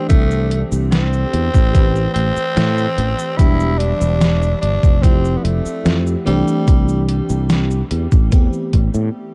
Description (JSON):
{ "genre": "vaporwave", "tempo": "73 BPM", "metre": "4/4", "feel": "straight", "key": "A minor", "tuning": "A4 = 440 Hz", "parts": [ { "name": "raspy tenor saxophone", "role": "melody", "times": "0.0-7.0 s", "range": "G3 to E4", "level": "-25 LUFS", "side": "equal", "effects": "tape echo" }, { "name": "FM electric piano with soft pad layer", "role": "accompaniment", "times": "0.0-9.3 s", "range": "E3 to B4", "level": "-24 LUFS", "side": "equal", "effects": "lush chorus, analog delay" }, { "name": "sustaining fretless electric bass", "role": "bass", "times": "0.1-9.1 s", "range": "E1 to A2", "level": "-20 LUFS", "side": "equal", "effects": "subtle chorus" }, { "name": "detuned 8-bit digital drum machine", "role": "drums", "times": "0.1-9.1 s", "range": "cabasa, hi-hat, snare drum", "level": "-23 LUFS", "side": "equal", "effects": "overdrive, vintage 12-bit sampler grit" }, { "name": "electronic kick drum", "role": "drums", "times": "0.1-8.9 s", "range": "none", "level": "-14 LUFS", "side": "equal", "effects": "overdrive, vintage 12-bit sampler grit" } ], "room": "little or no reverb", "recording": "dark, warm production", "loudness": "-16 LUFS", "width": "mono", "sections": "0.0-9.3 A section", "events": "stop 9.1", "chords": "0.0 C69; 1.7 Am9; 3.4 Em7; 5.0 Fmaj7; 6.3 C69; 8.3 Am9" }